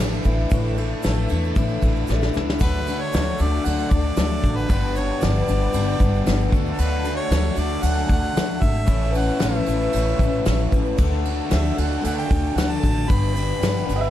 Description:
folk rock and heartland rock; 114 BPM; 4/4; straight; D major; A4 = 444 Hz
picked steel-string acoustic guitar; accompaniment; 0.0-14.1 s; G2 to B4; -27 LUFS; left 5 dB
bright studio string section; sustained chords; 0.0-14.1 s; A4 to D6; -38 LUFS; equal
biting overdriven guitar; riff; 0.0-14.1 s; A2 to B4; -28 LUFS; equal
upright bass; bass; 0.0-14.1 s; G1 to E2; -23 LUFS; equal
tube shaker; percussion; 0.1-14.1 s; -46 LUFS; right 8 dB
soft brush drum kit; drums; 0.2-14.0 s; crash cymbal, kick drum, ride cymbal, snare drum; -24 LUFS; equal
clear harmonica; melody; 2.6-14.1 s; A4 to B5; -29 LUFS; equal
clear upright piano; second line; 14.0-14.1 s; Eb5 to E5; -28 LUFS; right 8 dB
small room ambience; dark, warm production, lossy compression artefacts; -18 LUFS; side -12 dB against mid
0.0-2.6 A section; 2.6-14.1 B section
drum fill 2.1-2.6
0.0 Asus4; 2.6 D; 4.7 G; 6.5 D; 8.9 Aadd9; 11.0 D; 13.1 G

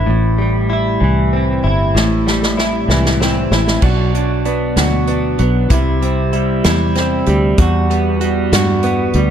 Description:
six-eight pop ballad; 64 BPM (dotted quarters); 6/8; straight; A4 = 440 Hz
direct-recorded clean electric guitar; accompaniment; 0.0-9.3 s; E2 to F#4; -16 LUFS; equal; double-tracked left and right
fingered electric bass; bass; 0.0-9.3 s; G1 to G2; -17 LUFS; equal
unplugged drum kit; drums; 2.0-9.3 s; crash cymbal, hi-hat, kick drum, snare drum; -18 LUFS; equal
direct-recorded clean electric guitar; arpeggios; 3.8-9.3 s; F#3 to F#4; -21 LUFS; right 8 dB; wide subtle chorus
light reverb, small room ambience; dark, warm production; -12 LUFS; side -9 dB against mid
0.0-3.8 A section; 3.8-9.3 B section
drum fill 1.9-3.8
0.1 Am7; 3.8 Bm; 5.7 C; 7.6 Emadd9

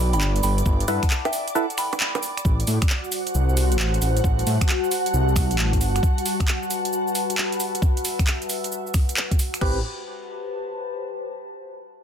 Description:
UK garage, two-step garage; 134 BPM; 4/4; swing 66% on 16ths; A dorian; A4 = 440 Hz
ethereal airy pad; sustained chords; 0.0-9.6 s; F#4 to D6; -29 LUFS; equal; ensemble chorus, built-in reverb, sidechain pumping
dark detuned saw bass; bass; 0.0-6.0, 9.6-9.8 s; G1 to A2; -21 LUFS; equal
soft synth bell; melody; 0.1-2.4 s; E5 to B5; -29 LUFS; right 1 dB; chorus, phaser, ping-pong delay
garage drum kit; drums; 0.1-9.7 s; bongos, cabasa, crash cymbal, finger snaps, handclaps, hi-hat; -27 LUFS; right 2 dB; overdrive, studio reverb
electronic kick drum; drums; 0.7-9.7 s; -21 LUFS; equal; overdrive, studio reverb
percussive organ stab; stabs; 0.9-1.7, 9.6-9.8 s; C4 to B4; -27 LUFS; right 2 dB; wide subtle chorus, dub echo
warbly tape-like pad; texture; 3.1-11.4 s; G3 to A5; -30 LUFS; left 4 dB; chorus, built-in reverb, phaser, sidechain pumping
little or no reverb; dense, heavily limited modern master; -20 LUFS; side -8 dB against mid
0.0-2.5 A section; 2.5-9.6 B section; 9.6-11.4 C section
drop 0.0-2.5; band accent 2.0; fade-out on ambient pad 2.5-9.6
0.0 G69; 2.5 Am7; 5.8 G69; 9.6 Am9

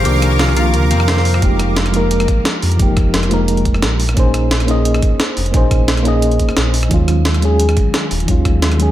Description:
liquid drum and bass; 175 BPM; 4/4; swing 53% on 16ths; F minor; A4 = 439 Hz
mellow FM electric piano; accompaniment; 0.0-8.9 s; C3 to Eb5; -18 LUFS; equal; chorus, tremolo, analog delay
shimmering ambient pad; sustained chords; 0.0-1.4 s; Bb4 to D6; -23 LUFS; right 1 dB; chorus, built-in reverb, sidechain pumping
concert harp; arpeggios; 0.0-3.9 s; C4 to C5; -24 LUFS; left 3 dB; tape echo
sub bass with octave; bass; 0.0-8.9 s; Eb1 to F2; -16 LUFS; equal
breakbeat sampler-style drum kit; drums; 0.1-8.9 s; hi-hat, rim click, snare drum; -20 LUFS; right 1 dB
electronic kick drum; drums; 1.4-8.5 s; -15 LUFS; equal
light reverb, digital ambience; -12 LUFS; side -13 dB against mid
0.0-1.4 A section; 1.4-8.9 A section
drop 0.0-1.4, 1.4-8.9; break 0.1-1.4
0.0 Cm11; 1.4 Fm11; 4.0 Bbm11; 6.9 Ebm11

